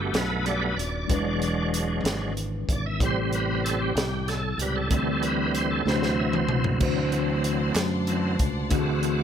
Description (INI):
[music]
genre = slow gospel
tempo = 63 BPM (dotted quarters)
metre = 6/8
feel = straight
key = unclear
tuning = A4 = 435 Hz
[part]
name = mellow tine electric piano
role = accompaniment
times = 0.0-9.2 s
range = G2 to C5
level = -29 LUFS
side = left 2 dB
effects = medium stereo tremolo
[part]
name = bright tonewheel organ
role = sustained chords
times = 0.0-9.2 s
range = C3 to E5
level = -28 LUFS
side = right 2 dB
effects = overdrive, chorus vibrato, fast rotary speaker
[part]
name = fingered electric bass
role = bass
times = 0.0-9.2 s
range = Eb1 to F#2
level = -29 LUFS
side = equal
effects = none
[part]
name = crisp fusion drum kit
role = drums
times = 0.1-9.2 s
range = crash cymbal, hi-hat, kick drum, snare drum, toms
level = -28 LUFS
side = equal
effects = none
[part]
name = rich studio string section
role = sustained chords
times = 6.8-9.2 s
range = D5 to D6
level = -37 LUFS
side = left 4 dB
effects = none
[part]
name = group handclap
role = percussion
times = 7.8-8.1 s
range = none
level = -33 LUFS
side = right 3 dB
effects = none
[sound]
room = light reverb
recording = none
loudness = -23 LUFS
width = side -8 dB against mid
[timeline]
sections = 0.0-6.8 A section; 6.8-9.2 B section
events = tonewheel organ solo 0.0-6.8, 6.8-9.2; drum fill 5.9-6.8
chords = 0.0 Gmaj7; 1.1 E7; 3.0 Am7; 4.9 D7sus4; 5.9 D7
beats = 0.14 | 1.10 2.05 | 3.00 3.96 | 4.91 5.86 | 6.82 7.77 | 8.72